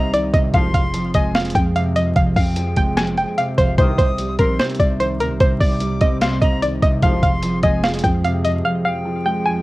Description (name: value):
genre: hip hop, trap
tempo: 148 BPM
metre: 4/4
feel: half-time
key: unclear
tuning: A4 = 441 Hz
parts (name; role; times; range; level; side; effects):
- string-like resonator pluck; melody; 0.0-9.6 s; Bb4 to Ab5; -20 LUFS; equal; chorus, low-pass filter, cassette tape
- breathy bright jazz flute; second line; 0.0-9.6 s; F5 to Eb6; -30 LUFS; left 2 dB; cassette tape, tape echo
- dark grand piano; accompaniment; 0.0-9.6 s; F2 to C4; -23 LUFS; right 1 dB; low-pass filter, cassette tape
- warbly tape-like pad; sustained chords; 0.0-9.6 s; C3 to Ab4; -30 LUFS; equal; chorus, built-in reverb, cassette tape
- growling 808-style bass; bass; 0.0-8.6 s; F1 to F2; -23 LUFS; equal; none
- boom bap sampler-style drum kit; drums; 0.1-8.5 s; hi-hat, kick drum, snare drum; -19 LUFS; equal; none
- dark brass ensemble; stabs; 0.5-0.8, 3.8-4.1, 7.0-7.3 s; C2 to F3; -26 LUFS; left 1 dB; cassette tape
room: little or no reverb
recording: home recording on cassette, vinyl crackle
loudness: -15 LUFS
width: side -19 dB against mid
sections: 0.0-9.6 A section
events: break 8.6-9.6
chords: 0.0 Cm; 0.5 Fm; 3.8 Cm; 7.0 Fm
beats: 0.13 | 0.54 0.94 1.35 1.75 | 2.16 2.57 2.97 3.38 | 3.78 4.19 4.59 5.00 | 5.40 5.81 6.21 6.62 | 7.03 7.43 7.84 8.24 | 8.65 9.05 9.46